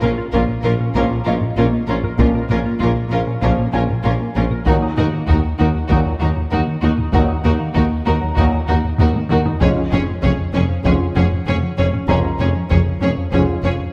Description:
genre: cinematic, hybrid orchestral and electronic film score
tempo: 97 BPM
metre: 4/4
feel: straight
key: Bb minor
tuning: A4 = 440 Hz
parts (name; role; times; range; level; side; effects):
- warm symphonic violin section; melody; 0.0-13.7 s; Bb4 to Db5; -29 LUFS; equal; none
- rich symphonic violin section; second line; 0.0-13.7 s; F4 to Ab4; -30 LUFS; equal; none
- warm symphonic viola section; accompaniment; 0.0-13.7 s; Db4 to Eb4; -30 LUFS; equal; none
- glassy wavetable pluck; arpeggios; 0.0-13.7 s; Db3 to Bb4; -30 LUFS; equal; none
- smooth synth bass; riff; 0.0-13.9 s; Eb2 to Bb3; -26 LUFS; equal; none
- mellow tuba; bass; 0.0-13.8 s; F1 to Eb2; -26 LUFS; equal; none
- rich symphonic cello section; bass; 0.0-13.7 s; Eb2 to Bb2; -26 LUFS; equal; none
- rich symphonic double bass section; bass; 0.0-13.7 s; F1 to Eb2; -26 LUFS; equal; none
- taiko ensemble; drums; 0.0-13.9 s; none; -25 LUFS; equal; none
- felt-muted upright piano; texture; 0.3-13.9 s; Bb4 to Bb5; -34 LUFS; equal; digital delay
- warm trombone section; sustained chords; 0.9-13.5 s; F2 to Ab3; -32 LUFS; equal; none
- mellow French horn section; sustained chords; 1.0-13.5 s; F3 to F4; -29 LUFS; equal; none
room: moderate scoring stage reverb, RT60 1.7 s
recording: none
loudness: -17 LUFS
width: mono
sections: 0.0-13.9 A section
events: drum fill 9.0-9.6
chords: 0.0 Bbm; 4.7 Ebm; 9.6 Db/F

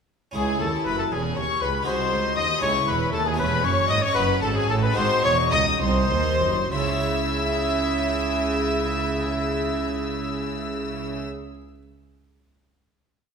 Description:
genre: classical, baroque-style concerto movement with solo episodes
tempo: 64-80 BPM (dotted quarters)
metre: 6/8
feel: straight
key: C# minor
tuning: A4 = 440 Hz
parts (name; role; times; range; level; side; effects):
- rich chamber violin section; second line; 0.3-11.2 s; G#4 to E5; -29 LUFS; equal; none
- harpsichord; accompaniment; 0.3-11.8 s; B#1 to E5; -32 LUFS; right 1 dB; none
- mellow trumpet; melody; 0.4-11.2 s; E4 to D#5; -28 LUFS; left 2 dB; none
- warm chamber violin section; melody; 0.4-11.2 s; G#5 to E6; -28 LUFS; left 7 dB; none
- dark chamber viola section; accompaniment; 0.4-11.2 s; C#4 to G#4; -31 LUFS; left 1 dB; none
- rich chamber cello section; bass; 0.4-11.2 s; B#1 to C#3; -29 LUFS; right 4 dB; none
- rich chamber double bass section; bass; 0.4-11.2 s; E1 to D#2; -29 LUFS; right 3 dB; none
room: moderate scoring stage reverb, RT60 1.5 s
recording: minimal, uncompressed stereo recording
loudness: -21 LUFS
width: side -6 dB against mid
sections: 0.4-6.7 ritornello; 6.7-10.5 final chord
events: slowing down 2.6-6.7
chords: 0.4 C#m; 1.9 G#7/B#; 2.6 C#m; 3.4 C#m/E; 4.2 D#m7b5/F#; 5.0 G#7; 6.7 C#m

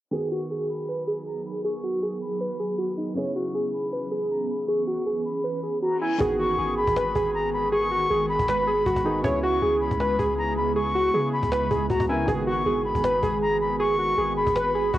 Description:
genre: hip hop, trap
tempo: 158 BPM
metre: 4/4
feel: half-time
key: G# minor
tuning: A4 = 440 Hz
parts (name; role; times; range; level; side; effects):
- warbly lo-fi synth keys; melody; 0.1-15.0 s; D#4 to C#5; -25 LUFS; right 1 dB; chorus, cassette tape, plate reverb
- warm concert grand piano; accompaniment; 0.1-15.0 s; C#3 to A#4; -33 LUFS; equal; cassette tape, plate reverb
- ethereal airy pad; sustained chords; 1.1-15.0 s; C#3 to G#4; -33 LUFS; right 2 dB; ensemble chorus, built-in reverb, phaser, cassette tape, plate reverb
- reedy silver concert flute; second line; 0.3-15.0 s; G#5 to C#6; -28 LUFS; left 2 dB; cassette tape, plate reverb, tape echo
- reverse cymbal; sound effects; 5.9-6.2 s; none; -43 LUFS; left 5 dB; none
- long sustained 808-style bass; bass; 6.2-15.0 s; G#1 to C#3; -33 LUFS; equal; none
- cajon; drums; 6.2-15.0 s; none; -31 LUFS; equal; cassette tape
room: wet studio reverb, RT60 0.7 s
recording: home recording on cassette, low-pass filter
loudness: -22 LUFS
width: side -14 dB against mid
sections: 0.1-6.2 A section; 6.2-15.0 B section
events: filter sweep 0.1-6.2; reverse cymbal 5.9-6.2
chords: 0.1 G#m7; 3.2 C#m7; 6.2 G#m7; 9.2 C#m7; 12.3 G#m7

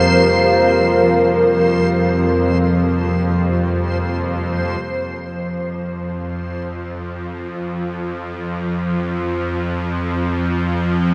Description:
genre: dark ambient drone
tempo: free time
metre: none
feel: none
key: unclear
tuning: A4 = 440 Hz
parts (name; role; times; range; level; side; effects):
- dark analog pad; sustained chords; 0.0-4.8 s; C4 to F5; -21 LUFS; equal; chorus, shimmer reverb
- bowed-like drone; drone; 0.0-11.1 s; F2 to F3; -21 LUFS; equal; built-in reverb
- backwards swelling texture; texture; 0.0-4.8 s; C5; -25 LUFS; equal; built-in reverb, shimmer reverb
room: wet cathedral reverb, RT60 5.4 s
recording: none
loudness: -19 LUFS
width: mono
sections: 0.0-4.8 A section; 4.8-11.1 B section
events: fade-in on synth drone 4.8-11.1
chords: 0.0 Fsus2; 4.8 N.C.

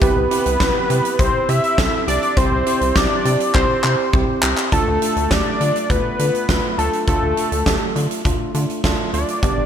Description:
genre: synth-pop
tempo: 102 BPM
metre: 4/4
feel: straight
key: D dorian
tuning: A4 = 440 Hz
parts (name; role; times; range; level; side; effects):
- fat analog lead; melody; 0.0-9.7 s; A4 to E5; -20 LUFS; left 1 dB; chorus
- tine electric piano; accompaniment; 0.0-9.7 s; A3 to A4; -23 LUFS; right 3 dB; lush chorus
- rubbery square bass; bass; 0.0-9.7 s; G1 to D3; -22 LUFS; equal; none
- huge arena drum kit; drums; 0.0-9.6 s; handclaps, hi-hat, kick drum, snare drum; -20 LUFS; equal; gated reverb
room: light reverb, small room reverb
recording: bright 1980s-style digital production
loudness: -16 LUFS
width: side -8 dB against mid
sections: 0.0-4.7 A section; 4.7-9.7 B section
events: drum fill 3.5-4.7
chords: 0.0 C; 4.7 Dm

